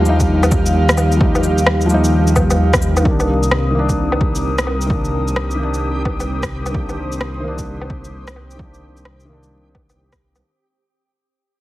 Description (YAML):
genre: future garage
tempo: 130 BPM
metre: 4/4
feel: swing 63% on 16ths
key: C minor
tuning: A4 = 444 Hz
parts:
  - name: felt-muted upright piano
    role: accompaniment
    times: 0.0-10.5 s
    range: Eb3 to Eb4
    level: -21 LUFS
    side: left 1 dB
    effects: sidechain pumping, low-pass filter, tape echo
  - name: airy breathy pad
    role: sustained chords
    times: 0.0-10.4 s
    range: C4 to Eb6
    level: -23 LUFS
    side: equal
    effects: chorus, vintage 12-bit sampler grit, sidechain pumping
  - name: dark detuned saw bass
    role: bass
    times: 0.0-10.4 s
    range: C2 to Eb2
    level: -19 LUFS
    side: equal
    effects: sidechain pumping
  - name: electronic cabasa, shaker, woodblock and rim click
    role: drums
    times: 0.1-10.4 s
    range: none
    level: -19 LUFS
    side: equal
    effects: overdrive, small room ambience
  - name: electronic kick drum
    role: drums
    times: 0.2-10.2 s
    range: none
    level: -20 LUFS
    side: equal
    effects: overdrive, small room ambience
  - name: backwards swelling texture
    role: texture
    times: 3.9-10.4 s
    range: G4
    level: -35 LUFS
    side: right 1 dB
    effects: built-in reverb
room: light reverb, digital ambience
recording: heavily compressed radio sound, vinyl crackle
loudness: -14 LUFS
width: side -16 dB against mid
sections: 0.0-3.1 A section; 3.1-10.4 B section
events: fade-out 3.1-10.4; filter sweep on felt piano 3.1-10.4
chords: 0.0 Ebadd9; 3.1 Cm7